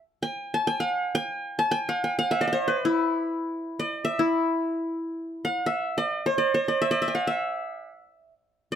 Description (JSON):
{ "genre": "Arabic maqam ensemble", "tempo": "free time", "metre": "none", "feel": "none", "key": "E maqam huzam", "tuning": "A4 = 440 Hz", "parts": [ { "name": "qanun", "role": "solo", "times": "0.2-8.8 s", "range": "E4 to A5-40c", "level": "-24 LUFS", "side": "equal", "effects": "none" } ], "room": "light reverb", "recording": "none", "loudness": "-24 LUFS", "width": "side -9 dB against mid", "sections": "0.0-5.2 A section; 5.2-8.8 A section", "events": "none", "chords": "none", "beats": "free time" }